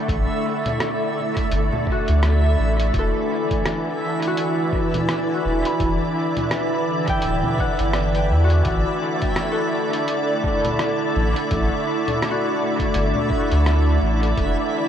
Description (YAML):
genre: ambient dub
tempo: 84 BPM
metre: 4/4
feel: swing 59% on 16ths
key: unclear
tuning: A4 = 439 Hz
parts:
  - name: soft additive organ-like pad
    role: sustained chords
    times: 0.0-14.9 s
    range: D3 to D5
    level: -22 LUFS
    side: equal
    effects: ensemble chorus, built-in reverb
  - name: concert harp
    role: arpeggios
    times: 0.0-14.9 s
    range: F#4 to B5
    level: -29 LUFS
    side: left 3 dB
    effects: diffuse ambient delay
  - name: backwards swelling texture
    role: texture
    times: 0.0-14.9 s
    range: E5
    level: -31 LUFS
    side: right 3 dB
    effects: built-in reverb, lush chorus
  - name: soft dub sub bass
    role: bass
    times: 0.1-14.6 s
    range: D1 to E2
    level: -19 LUFS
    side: equal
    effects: none
  - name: electronic kick drum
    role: drums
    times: 0.1-14.5 s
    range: none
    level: -26 LUFS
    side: equal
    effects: none
  - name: lo-fi sampler-style drum kit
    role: drums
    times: 0.1-14.5 s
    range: congas, hi-hat, rim click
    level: -30 LUFS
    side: left 1 dB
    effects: dub echo
room: wet huge ambient reverb, RT60 7.9 s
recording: dreamy mix soaked in reverb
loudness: -18 LUFS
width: side -9 dB against mid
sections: 0.0-14.9 A section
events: none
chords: 0.0 Asus4; 2.9 Em7; 8.7 Asus4; 14.4 E7(no3)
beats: | 0.08 0.80 1.51 2.23 | 2.94 3.65 4.37 5.08 | 5.80 6.51 7.23 7.94 | 8.65 9.37 10.08 10.80 | 11.51 12.23 12.94 13.65 | 14.37